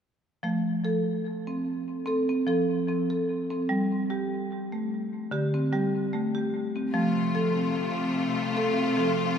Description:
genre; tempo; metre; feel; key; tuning
world meditative, meditative tuned percussion; 74 BPM; 4/4; swing 54% on 16ths; F major pentatonic; A4 = 440 Hz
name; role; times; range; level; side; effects
marimba with medium mallets; arpeggios; 0.4-9.4 s; D3 to A4; -26 LUFS; equal; tape echo
bright studio string section; sustained chords; 6.9-9.4 s; C3 to F4; -28 LUFS; left 4 dB; none
room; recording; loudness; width
wet cathedral reverb, RT60 5.1 s; none; -25 LUFS; side -8 dB against mid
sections
0.4-9.4 A section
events
none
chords
0.4 F; 3.7 G5; 6.9 F

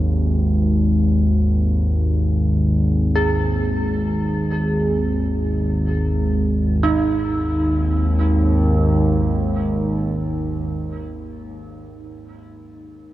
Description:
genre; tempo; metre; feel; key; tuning
dark ambient drone; free time; none; none; unclear; A4 = 441 Hz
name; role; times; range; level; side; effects
analog drone; drone; 0.0-10.7 s; Ab1 to Eb2; -18 LUFS; equal; chorus
dark detuned synth bell; arpeggios; 3.2-13.0 s; Eb4 to Ab4; -25 LUFS; right 2 dB; chorus, phaser, diffuse ambient delay
room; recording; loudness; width
wet huge ambient reverb, RT60 7.9 s; worn, warbling old tape, cassette tape, warbly pitch drift, small room ambience; -17 LUFS; side -14 dB against mid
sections
0.0-6.8 A section; 6.8-10.5 B section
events
none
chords
0.0 Ab5

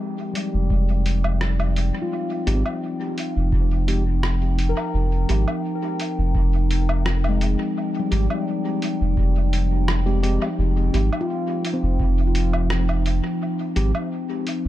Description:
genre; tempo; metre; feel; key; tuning
ambient dub; 85 BPM; 4/4; straight; F minor; A4 = 436 Hz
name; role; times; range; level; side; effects
warbly tape-like pad; sustained chords; 0.0-14.7 s; F3 to G5; -27 LUFS; left 1 dB; chorus, built-in reverb
handpan; arpeggios; 0.0-14.3 s; G3 to Bb4; -30 LUFS; left 3 dB; low-pass filter, tape echo
lo-fi sampler-style drum kit; drums; 0.4-14.6 s; hi-hat, rim click, woodblock; -30 LUFS; equal; overdrive, dub echo
soft dub sub bass; bass; 0.5-14.7 s; F1 to Ab1; -20 LUFS; equal; none
electronic kick drum; drums; 0.7-12.1 s; none; -24 LUFS; equal; none
mellow tine electric piano; stabs; 2.5-13.9 s; Ab3 to G4; -32 LUFS; right 1 dB; medium stereo tremolo, dub echo
room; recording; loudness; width
digital ambience; dark, warm production; -20 LUFS; side -14 dB against mid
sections
0.0-14.7 A section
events
filter sweep on handpan 0.0-14.7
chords
0.0 Fm7

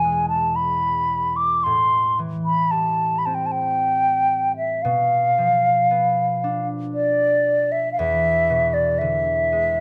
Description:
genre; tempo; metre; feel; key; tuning
celtic folk, Celtic slow air; 57 BPM; 3/4; rubato; A minor; A4 = 440 Hz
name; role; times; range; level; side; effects
mellow hollow wooden flute; melody; 0.0-9.8 s; D5 to D6; -21 LUFS; equal; none
concert harp; accompaniment; 0.0-9.8 s; E2 to D4; -30 LUFS; equal; none
room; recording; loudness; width
light reverb; close, detailed microphones; -20 LUFS; mono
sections
0.0-9.8 A section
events
none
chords
0.0 E; 1.7 Am7; 4.9 Bdim; 8.0 E7

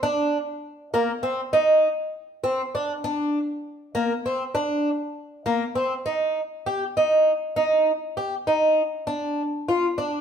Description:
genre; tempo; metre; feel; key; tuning
progressive instrumental, progressive; 199 BPM (eighths); 5/8; straight; unclear; A4 = 439 Hz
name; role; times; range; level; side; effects
fingerpicked twelve-string acoustic guitar; solo; 0.0-10.2 s; Bb3 to G4; -21 LUFS; equal; none
room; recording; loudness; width
moderate stone room reverb, RT60 1.0 s; band playing live in one room; -21 LUFS; side -8 dB against mid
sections
0.0-6.1 A section; 6.1-10.2 B section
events
none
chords
none

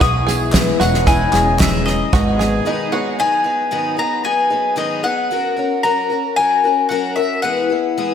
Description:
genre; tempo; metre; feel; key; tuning
indie folk with a building arrangement; 113 BPM; 4/4; straight; G# minor; A4 = 439 Hz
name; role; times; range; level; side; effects
mandolin; melody; 0.0-8.1 s; D#5 to D#6; -18 LUFS; left 2 dB; slapback echo
felt-muted upright piano; accompaniment; 0.0-3.2 s; G#1 to E5; -26 LUFS; right 2 dB; slapback echo
picked twelve-string acoustic guitar; accompaniment; 0.0-8.1 s; G#2 to A#4; -21 LUFS; left 5 dB; slapback echo
mellow brass ensemble; sustained chords; 0.0-3.2 s; B2 to D#5; -28 LUFS; left 2 dB; none
bluegrass banjo; arpeggios; 0.0-3.2 s; E4 to G#4; -24 LUFS; right 6 dB; slapback echo, analog delay
upright bass; bass; 0.0-2.6 s; E1 to B1; -19 LUFS; right 1 dB; none
natural country drum kit; drums; 0.0-2.5 s; kick drum, snare drum; -18 LUFS; equal; none
tambourine; percussion; 0.3-2.2 s; none; -34 LUFS; right 11 dB; none
group handclap; percussion; 0.5-1.7 s; none; -30 LUFS; left 2 dB; none
room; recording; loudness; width
moderate lush hall reverb, RT60 1.7 s, small room ambience; big arena sound; -14 LUFS; side -8 dB against mid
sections
0.0-3.2 A section; 3.2-8.1 A section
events
break 2.7-3.2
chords
0.0 E; 0.8 C#madd9/E; 2.1 G#m; 3.2 G#m7; 5.3 F#; 7.4 E

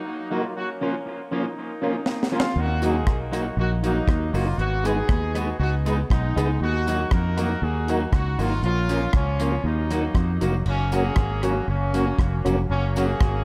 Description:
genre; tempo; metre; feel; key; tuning
ska; 119 BPM; 4/4; straight; Eb minor; A4 = 442 Hz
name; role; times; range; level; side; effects
clear horn section; melody; 0.0-13.4 s; F3 to Bb4; -31 LUFS; equal; dub echo
electric guitar at the edge of break-up; accompaniment; 0.3-13.1 s; F3 to Ab4; -33 LUFS; equal; dub echo
mellow tonewheel organ; stabs; 0.3-13.1 s; Db4 to Cb5; -32 LUFS; equal; chorus vibrato, slow rotary speaker
deep reggae drum kit; drums; 2.1-13.3 s; crash cymbal, hi-hat, kick drum, rim click, snare drum; -27 LUFS; equal; dub echo
fingered electric bass; bass; 2.6-13.4 s; F1 to F2; -27 LUFS; equal; none
tambourine; percussion; 2.8-13.1 s; none; -54 LUFS; equal; none
room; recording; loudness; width
moderate club reverb, RT60 0.8 s; none; -23 LUFS; mono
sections
0.0-10.7 A section; 10.7-13.4 B section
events
drum fill 2.1-2.6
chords
0.0 Ebm; 0.5 Bbm; 2.6 Ebm; 4.6 Abm; 6.6 Ebm; 8.6 Bbm; 9.6 Ebm; 10.7 Gb

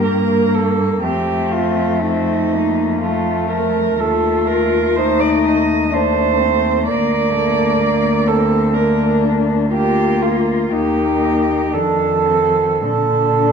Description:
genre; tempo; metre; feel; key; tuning
classical, lyrical piece for cello ensemble; 52-65 BPM; 3/4; rubato; Bb major; A4 = 440 Hz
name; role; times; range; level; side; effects
muted cello; melody; 0.0-13.5 s; A3 to F4; -21 LUFS; left 8 dB; none
muted cello; second line; 0.0-13.5 s; Eb4 to Eb5; -18 LUFS; right 6 dB; none
muted cello; accompaniment; 0.0-13.5 s; D3 to Bb3; -22 LUFS; left 2 dB; none
muted cello; bass; 0.0-13.5 s; D2 to Bb2; -20 LUFS; equal; none
room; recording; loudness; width
wet recital hall reverb, RT60 1.5 s; minimal, uncompressed stereo recording; -14 LUFS; side -6 dB against mid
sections
0.0-13.5 A section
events
none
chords
0.0 Eb/G (rootless); 1.0 F; 4.0 F7/Eb; 6.9 Bb/D; 10.7 Eb; 11.7 F7; 12.8 Bb

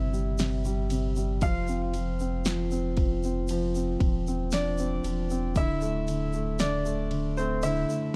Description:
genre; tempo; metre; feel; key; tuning
pop ballad; 58 BPM; 4/4; straight; unclear; A4 = 435 Hz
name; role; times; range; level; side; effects
clear baby grand piano; melody; 0.0-8.2 s; C4 to F5; -36 LUFS; equal; none
felt-muted upright piano; accompaniment; 0.0-8.2 s; C3 to C4; -32 LUFS; equal; none
warm sub bass; bass; 0.0-7.8 s; D1 to G1; -33 LUFS; equal; none
tube shaker; percussion; 0.1-8.1 s; none; -48 LUFS; equal; none
house drum kit; drums; 0.4-7.9 s; kick drum, ride cymbal, snare drum; -31 LUFS; equal; none
room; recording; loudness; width
small room ambience; dark, warm production; -28 LUFS; mono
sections
0.0-8.2 A section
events
none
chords
0.0 C; 1.4 F5; 5.6 D5

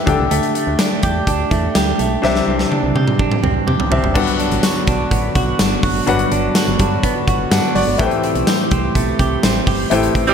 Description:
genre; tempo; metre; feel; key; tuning
1980s-style pop; 125 BPM; 4/4; straight; G major; A4 = 440 Hz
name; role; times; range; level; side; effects
clear baby grand piano; accompaniment; 0.0-10.3 s; G2 to G5; -21 LUFS; left 4 dB; none
pipe organ, stopped flute; sustained chords; 0.0-10.3 s; D3 to G4; -24 LUFS; right 2 dB; none
solid FM bass; bass; 0.1-10.3 s; F#1 to C3; -21 LUFS; equal; none
huge arena drum kit; drums; 0.1-10.3 s; crash cymbal, hi-hat, kick drum, snare drum, tambourine, toms; -18 LUFS; equal; gated reverb
direct-recorded clean electric guitar; riff; 0.3-10.3 s; E3 to G4; -21 LUFS; right 4 dB; lush chorus, ping-pong delay
warm horn section; stabs; 10.3 s; E3 to G4; -11 LUFS; right 8 dB; none
room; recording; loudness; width
moderate lush hall reverb, RT60 1.9 s, small room ambience; bright 1980s-style digital production; -14 LUFS; side -7 dB against mid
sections
0.0-4.2 A section; 4.2-10.3 B section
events
drum fill 2.2-4.2; grand piano fill 7.3-8.0; band accent 9.9-10.3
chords
0.1 Dsus4; 2.2 Cadd9; 4.2 Gmaj7; 8.0 Am7

